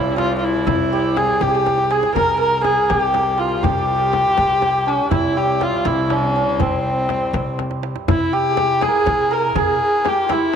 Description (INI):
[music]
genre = Persian modal ensemble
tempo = 81 BPM (dotted quarters)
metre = 6/8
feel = straight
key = C dastgah homayun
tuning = A4 = 440 Hz
[part]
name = dark kamancheh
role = melody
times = 0.0-10.6 s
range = C4 to Bb4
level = -18 LUFS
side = left 2 dB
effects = none
[part]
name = santur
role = second line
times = 0.0-10.6 s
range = C4 to Bb4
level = -22 LUFS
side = right 9 dB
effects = none
[part]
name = upright bass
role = bass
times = 0.0-9.7 s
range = C3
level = -26 LUFS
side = equal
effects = tube saturation
[part]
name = rich cello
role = drone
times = 0.0-8.1 s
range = C2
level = -28 LUFS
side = left 2 dB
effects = none
[part]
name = frame drum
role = percussion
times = 0.2-10.6 s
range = none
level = -27 LUFS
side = left 8 dB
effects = none
[part]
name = tombak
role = percussion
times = 0.2-10.4 s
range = none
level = -27 LUFS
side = right 5 dB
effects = none
[sound]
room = wet spring reverb, RT60 2.6 s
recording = 1960s-style stereo with parts hard left and right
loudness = -16 LUFS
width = side -7 dB against mid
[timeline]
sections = 0.0-8.1 A section; 8.1-10.6 B section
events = drum fill 1.7-2.2, 7.6-8.1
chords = none